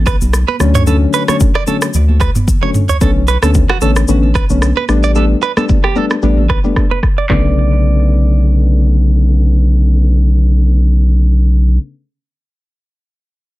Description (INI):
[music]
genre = afrobeats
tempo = 112 BPM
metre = 4/4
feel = swing 55% on 16ths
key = B minor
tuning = A4 = 440 Hz
[part]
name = saturated sub bass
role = bass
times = 0.0-11.8 s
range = A1 to D2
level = -10 LUFS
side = equal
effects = none
[part]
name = direct-recorded clean electric guitar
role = riff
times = 0.1-8.9 s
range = F#4 to D5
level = -19 LUFS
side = right 8 dB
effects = digital delay
[part]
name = afro-pop drum kit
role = drums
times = 0.1-7.4 s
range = handclaps, kick drum, rim click, shaker, snare drum, toms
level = -14 LUFS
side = equal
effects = soft clipping on snare
[part]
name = congas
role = percussion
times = 0.2-7.5 s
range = none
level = -25 LUFS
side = right 5 dB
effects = none
[part]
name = soft electric-piano-like synth keys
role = accompaniment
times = 0.6-11.8 s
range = C#3 to D4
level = -17 LUFS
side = left 4 dB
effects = chorus
[sound]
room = little or no reverb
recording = dense, heavily limited modern master, low-pass filter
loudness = -10 LUFS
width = side -17 dB against mid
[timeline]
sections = 0.0-3.0 A section; 3.0-7.3 B section; 7.3-11.6 C section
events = drum fill 2.5-3.0; filter sweep 3.0-7.3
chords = 0.0 B7(no3); 0.6 Dmaj7; 3.0 Bm9; 4.9 A9sus4; 7.3 Bm9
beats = 0.33 | 0.87 1.41 1.94 2.48 | 3.01 3.55 4.08 4.62 | 5.16 5.69 6.23 6.76 | 7.30 7.83 8.37 8.90 | 9.44 9.98 10.51 11.05